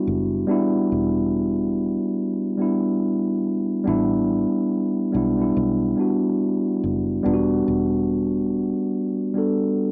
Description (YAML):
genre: lo-fi hip hop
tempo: 71 BPM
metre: 4/4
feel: swing 59% on 16ths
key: E minor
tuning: A4 = 440 Hz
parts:
  - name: mellow tine electric piano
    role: accompaniment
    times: 0.0-9.9 s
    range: G3 to A4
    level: -22 LUFS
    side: equal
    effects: low-pass filter
  - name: fingered electric bass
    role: bass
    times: 0.1-8.7 s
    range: E1 to B1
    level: -32 LUFS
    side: equal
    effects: none
room: light reverb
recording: home recording on cassette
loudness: -22 LUFS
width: mono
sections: 0.0-9.9 A section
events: none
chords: 0.0 Em9; 3.9 A9sus4; 7.2 Em9